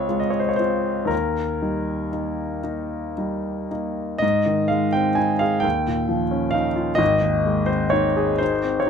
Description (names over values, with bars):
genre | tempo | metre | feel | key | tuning
classical, romantic nocturne for solo piano | 37-45 BPM (dotted quarters) | 6/8 | rubato | Ab major | A4 = 438 Hz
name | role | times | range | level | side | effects
clear concert grand piano | solo | 0.0-8.9 s | Ab1 to Ab5 | -20 LUFS | equal | none
room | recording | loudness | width
little or no reverb | close, detailed microphones | -20 LUFS | side -6 dB against mid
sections
0.0-4.2 A section; 4.2-8.9 B section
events
none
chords
0.0 Dbmaj7; 1.1 Eb; 4.2 Ab; 5.6 Eb9; 7.0 Ab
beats
| 1.11 2.65 | 4.22 5.65 | 7.00 8.41